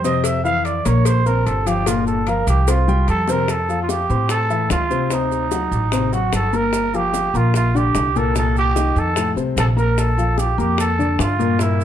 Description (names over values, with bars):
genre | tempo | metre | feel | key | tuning
Afro-Cuban jazz | 148 BPM | 4/4 | straight | F major | A4 = 439 Hz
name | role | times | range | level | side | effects
growling trumpet | melody | 0.0-11.8 s | Eb4 to F5 | -21 LUFS | right 3 dB | slapback echo
warm grand piano | accompaniment | 0.0-11.8 s | A2 to C6 | -22 LUFS | left 4 dB | none
upright bass | bass | 0.0-11.8 s | G1 to A2 | -20 LUFS | equal | none
maracas | percussion | 0.0-11.8 s | none | -33 LUFS | right 10 dB | none
cowbell and bongos | percussion | 0.2-11.8 s | none | -27 LUFS | left 6 dB | none
room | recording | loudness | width
moderate large studio reverb, RT60 0.9 s | dark, warm production | -16 LUFS | side -10 dB against mid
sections
0.0-3.5 A section; 3.5-11.8 B section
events
trumpet solo 0.0-3.5; drum fill 3.3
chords
0.2 F5; 1.1 Gm7; 2.7 Csus4; 3.5 Fmaj7; 5.1 D7b9; 6.7 Gm7; 8.4 Cm7; 9.2 F; 10.0 Bbmaj7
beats
| 0.25 0.65 1.06 1.46 | 1.87 2.27 2.68 3.08 | 3.49 3.90 4.30 4.71 | 5.11 5.52 5.92 6.33 | 6.73 7.14 7.54 7.95 | 8.36 8.76 9.17 9.57 | 9.98 10.38 10.79 11.19 | 11.60